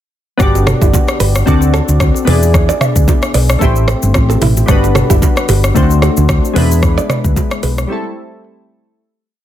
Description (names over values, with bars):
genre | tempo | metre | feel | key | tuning
afrobeats | 112 BPM | 4/4 | swing 55% on 16ths | A dorian | A4 = 441 Hz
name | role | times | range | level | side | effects
glassy digital keys | accompaniment | 0.4-9.0 s | G3 to D5 | -16 LUFS | left 3 dB | chorus
hollow-body short-scale fingered electric bass | bass | 0.4-7.8 s | F#1 to E2 | -13 LUFS | equal | none
afro-pop drum kit | drums | 0.4-7.9 s | hi-hat, kick drum, rim click, shaker, toms | -14 LUFS | equal | soft clipping on snare
congas and bongos | percussion | 0.4-7.5 s | none | -24 LUFS | right 7 dB | none
nylon-string guitar | riff | 0.7-7.7 s | E4 to E5 | -20 LUFS | right 6 dB | ping-pong delay
room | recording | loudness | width
light reverb | dense, heavily limited modern master | -10 LUFS | side -12 dB against mid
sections
0.4-9.0 chorus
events
fade-out 6.8-9.0; break 7.9-9.0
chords
0.4 Gmaj7; 1.5 D7; 2.3 E7; 3.6 Am7; 4.7 Gmaj7; 5.8 D7; 6.6 E7; 7.9 Am7